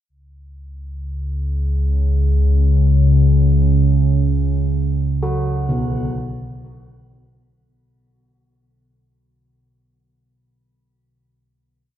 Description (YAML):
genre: dark ambient drone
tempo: free time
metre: none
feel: none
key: unclear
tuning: A4 = 439 Hz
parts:
  - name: deep rumbling drone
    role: drone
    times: 1.0-7.7 s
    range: C#2 to C#3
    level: -15 LUFS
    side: equal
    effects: built-in reverb
  - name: old church bells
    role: arpeggios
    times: 5.2-11.3 s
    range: B2 to F#4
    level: -24 LUFS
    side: equal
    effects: none
room: wet cathedral reverb, RT60 6.0 s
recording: in a vast, echoing space, cassette tape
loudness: -15 LUFS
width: side -10 dB against mid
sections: 0.1-7.6 A section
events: fade-out 3.8-7.6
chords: 0.1 C#7sus4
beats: free time